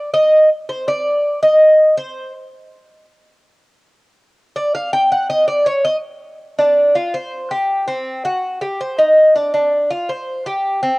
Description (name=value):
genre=latin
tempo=163 BPM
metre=4/4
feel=straight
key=unclear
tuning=A4 = 440 Hz
part: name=Cuban tres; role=solo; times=0.0-2.3, 4.6-11.0 s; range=C4 to G5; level=-13 LUFS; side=equal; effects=cassette tape
room=light reverb, small room ambience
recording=home recording on cassette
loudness=-13 LUFS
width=side -24 dB against mid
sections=0.0-6.6 A section; 6.6-11.0 B section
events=Cuban tres solo 0.0-6.6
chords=none